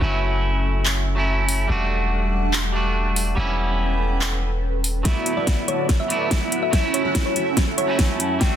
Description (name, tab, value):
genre	future bass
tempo	143 BPM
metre	4/4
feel	half-time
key	D major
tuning	A4 = 437 Hz
part	clean electric guitar	accompaniment	0.0-8.6 s	F#3 to F#4	-25 LUFS	right 2 dB	vibrato effect, sidechain pumping, tape echo
part	airy breathy pad	sustained chords	0.0-8.6 s	D3 to G5	-30 LUFS	equal	chorus, phaser, sidechain pumping
part	long sustained 808-style bass	bass	0.0-8.6 s	D1 to F#2	-24 LUFS	equal	sidechain pumping, high-pass filter
part	dubstep drum kit	drums	0.9-8.5 s	handclaps, hi-hat, snare drum	-25 LUFS	equal	none
part	big bright polysynth	riff	5.0-8.6 s	B3 to A5	-25 LUFS	right 3 dB	chorus, phaser, sidechain pumping
part	thumb-piano-like synth pluck	melody	5.1-8.6 s	C#5 to G5	-26 LUFS	left 2 dB	chorus, phaser, sidechain pumping, tape echo
part	electronic kick drum	drums	5.1-8.5 s	none	-21 LUFS	equal	none
room	light reverb, digital ambience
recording	dense, heavily limited modern master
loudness	-19 LUFS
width	side -10 dB against mid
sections	0.0-5.1 A section; 5.1-8.6 B section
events	filter sweep on analog synth pad 0.0-5.1; build-up 5.1-8.6; drum fill 5.1-8.6; filter sweep on analog polysynth 5.1-8.6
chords	0.0 F#m7; 1.7 Em11; 3.4 A9/E; 5.1 D69; 6.7 F#m7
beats	| 0.02 0.44 0.86 1.28 | 1.70 2.12 2.53 2.95 | 3.37 3.79 4.21 4.63 | 5.05 5.47 5.89 6.31 | 6.73 7.15 7.57 7.99 | 8.41